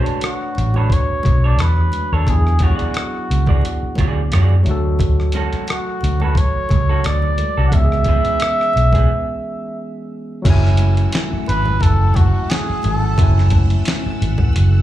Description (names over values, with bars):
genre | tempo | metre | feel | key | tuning
R&B, neo-soul | 88 BPM | 4/4 | swing 53% on 16ths | F# minor | A4 = 440 Hz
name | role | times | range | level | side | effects
electric guitar through a small old amp | second line | 0.0-9.1 s | B3 to D5 | -28 LUFS | right 7 dB | slapback echo
overdriven tine electric piano | accompaniment | 0.0-14.8 s | E3 to G#5 | -26 LUFS | left 2 dB | slapback echo
vintage muted fingered electric bass | bass | 0.1-14.8 s | F#1 to F#2 | -15 LUFS | equal | none
dusty soul sampler-style drum kit | drums | 0.1-14.7 s | crash cymbal, hi-hat, kick drum, rim click, snare drum | -18 LUFS | equal | none
trumpet with cup mute | melody | 0.2-13.5 s | F#4 to F#5 | -22 LUFS | right 1 dB | slapback echo, tape echo
congas | percussion | 0.2-14.7 s | none | -32 LUFS | right 2 dB | none
string machine, full ensemble | sustained chords | 10.4-14.8 s | A3 to E6 | -30 LUFS | right 1 dB | phaser, ensemble chorus
room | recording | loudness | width
digital ambience | live gig heard through the venue's PA, club reverb | -14 LUFS | side -13 dB against mid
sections
0.0-10.4 A section; 10.4-14.8 B section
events
break 9.1-10.4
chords
0.0 Bm9; 2.3 E9; 4.7 Dmaj7; 7.7 C#m7; 10.4 F#m9